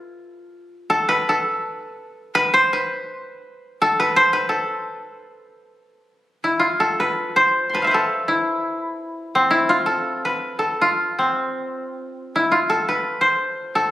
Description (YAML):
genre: japanese traditional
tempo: 76-85 BPM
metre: 2/4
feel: rubato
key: A hirajoshi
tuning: A4 = 440 Hz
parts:
  - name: koto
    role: solo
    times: 0.0-13.9 s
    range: C4 to C6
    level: -18 LUFS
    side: equal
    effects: none
room: moderate scoring stage reverb, RT60 1.7 s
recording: recorded on a phone in the room, club reverb, compression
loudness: -18 LUFS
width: side -14 dB against mid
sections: 0.0-6.1 A section; 6.1-13.9 B section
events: none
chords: none